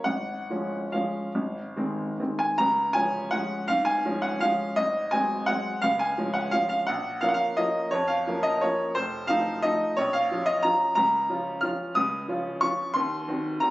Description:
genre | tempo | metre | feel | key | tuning
classical, piano waltz | 128-193 BPM | 3/4 | rubato | Db major | A4 = 439 Hz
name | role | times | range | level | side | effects
clear upright piano | solo | 0.0-13.7 s | F1 to F6 | -24 LUFS | equal | none
room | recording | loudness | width
moderate recital hall reverb, RT60 1.5 s | recorded on a phone in the room, club reverb, compression, nothing above 7.9 kHz | -24 LUFS | side -18 dB against mid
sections
0.0-2.6 A section; 2.6-13.7 B section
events
none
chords
0.1 Db/Ab; 1.4 Ab; 2.6 Db; 4.8 Ab7; 5.8 Db; 6.9 Bbm; 9.0 F7; 10.0 Bbm; 11.0 Bbm/Db; 13.0 Cdim/Eb

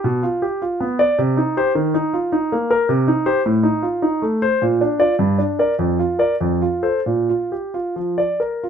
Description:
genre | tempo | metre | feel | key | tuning
classical, baroque-style suite movement for grand piano | 87-108 BPM | 3/4 | rubato | Bb major | A4 = 440 Hz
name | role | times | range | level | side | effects
clear concert grand piano | solo | 0.0-8.7 s | F2 to D5 | -16 LUFS | equal | none
room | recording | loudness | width
light reverb | none | -16 LUFS | side -8 dB against mid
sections
0.0-8.7 A section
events
none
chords
0.0 G7/B; 1.2 Cm; 1.8 Eb5; 2.9 Cm; 3.5 F7/A; 4.6 Bb; 5.2 Gm; 5.8 Bb/F; 6.4 F; 7.1 Bb

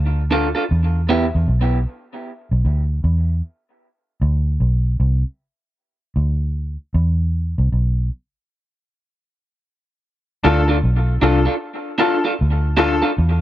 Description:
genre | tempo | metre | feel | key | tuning
reggae | 77 BPM | 4/4 | swing 63% on 16ths | D dorian | A4 = 440 Hz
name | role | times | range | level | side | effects
vintage muted fingered electric bass | bass | 0.0-13.4 s | B1 to E2 | -17 LUFS | equal | none
electric guitar at the edge of break-up | accompaniment | 0.3-1.3, 10.4-13.1 s | B3 to A4 | -21 LUFS | right 1 dB | tape echo
clear upright piano | stabs | 10.4-13.0 s | D4 to A4 | -21 LUFS | left 3 dB | tape echo
room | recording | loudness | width
light reverb | none | -16 LUFS | side -14 dB against mid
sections
0.0-10.1 A section; 10.1-13.4 B section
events
break 0.7-10.1; stop 8.5-10.1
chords
0.0 Dm; 0.7 E5; 3.8 Bm; 6.9 E5; 10.1 Dm

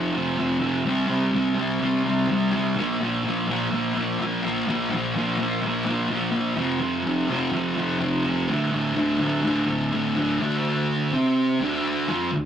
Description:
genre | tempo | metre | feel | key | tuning
rock | 126 BPM | 4/4 | straight | D minor | A4 = 440 Hz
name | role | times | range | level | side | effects
fuzz guitar | solo | 0.0-12.5 s | D2 to C4 | -21 LUFS | equal | distortion
room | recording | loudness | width
moderate studio reverb, RT60 0.6 s | rough rehearsal-room recording, tube saturation | -21 LUFS | side -9 dB against mid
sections
0.0-10.4 A section; 10.4-12.5 B section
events
none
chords
0.0 F5; 0.8 C5; 2.8 Bb5; 6.6 F5; 8.5 D5; 10.4 Dm

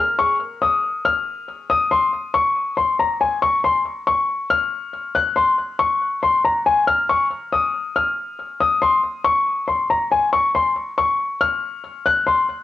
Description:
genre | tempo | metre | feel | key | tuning
hip hop | 139 BPM | 4/4 | half-time | F phrygian | A4 = 441 Hz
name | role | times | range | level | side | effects
dark grand piano | solo | 0.0-12.4 s | Ab5 to Gb6 | -17 LUFS | left 3 dB | low-pass filter, cassette tape, analog delay
room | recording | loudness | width
moderate studio reverb, RT60 0.6 s | home recording on cassette | -17 LUFS | side -13 dB against mid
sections
0.0-12.6 A section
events
none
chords
none

